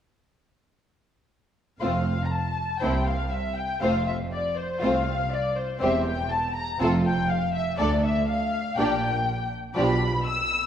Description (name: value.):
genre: quick classical-period movement for string orchestra.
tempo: 121 BPM.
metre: 4/4.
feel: straight.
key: F major.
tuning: A4 = 440 Hz.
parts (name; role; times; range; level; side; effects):
muted symphonic violin section; melody; 1.8-10.7 s; C5 to E6; -27 LUFS; left 3 dB; none.
muted symphonic violin section; second line; 1.8-10.0 s; E4 to D5; -30 LUFS; left 1 dB; none.
muted symphonic viola section; accompaniment; 1.8-10.0 s; F3 to D4; -30 LUFS; right 1 dB; none.
muted symphonic cello section; bass; 1.8-10.2 s; C2 to B2; -31 LUFS; right 3 dB; none.
muted symphonic double bass section; bass; 1.8-10.2 s; E1 to D2; -30 LUFS; right 2 dB; none.
room: wet scoring stage reverb, RT60 1.8 s.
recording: worn, warbling old tape, cassette tape, warbly pitch drift.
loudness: -23 LUFS.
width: side -9 dB against mid.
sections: 1.8-10.7 A section.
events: none.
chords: 1.8 F; 2.8 C7; 3.8 F; 5.8 C/E; 6.8 F; 7.8 Dm; 8.8 Gm/Bb; 9.8 G7/B.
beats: | 1.81 2.31 2.82 3.32 | 3.82 4.32 4.82 5.32 | 5.81 6.31 6.80 7.30 | 7.79 8.28 8.78 9.27 | 9.76 10.25.